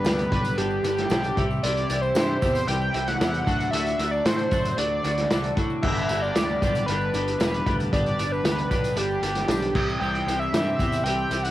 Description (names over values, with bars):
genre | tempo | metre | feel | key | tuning
indie rock | 115 BPM | 4/4 | straight | unclear | A4 = 439 Hz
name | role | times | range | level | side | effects
overdriven synth lead | melody | 0.0-11.5 s | G4 to G5 | -26 LUFS | equal | distortion, tape echo
twelve-string electric guitar | riff | 0.0-11.5 s | G2 to G4 | -28 LUFS | equal | double-tracked left and right, cassette tape
overdriven picked electric bass | bass | 0.0-11.5 s | E1 to A2 | -30 LUFS | equal | none
tambourine | percussion | 0.0-11.5 s | none | -48 LUFS | right 6 dB | none
vintage drum kit | drums | 0.1-11.5 s | crash cymbal, hi-hat, kick drum, snare drum | -26 LUFS | equal | cassette tape
room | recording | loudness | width
light reverb, small room ambience | home recording on cassette | -22 LUFS | side -14 dB against mid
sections
0.0-11.5 A section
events
none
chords
0.0 G; 1.4 C; 3.5 D; 5.8 G; 9.7 C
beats
0.05 0.58 1.11 | 1.63 2.16 2.68 3.21 | 3.73 4.26 4.78 5.31 | 5.83 6.35 6.88 7.40 | 7.92 8.45 8.97 9.49 | 10.01 10.53 11.05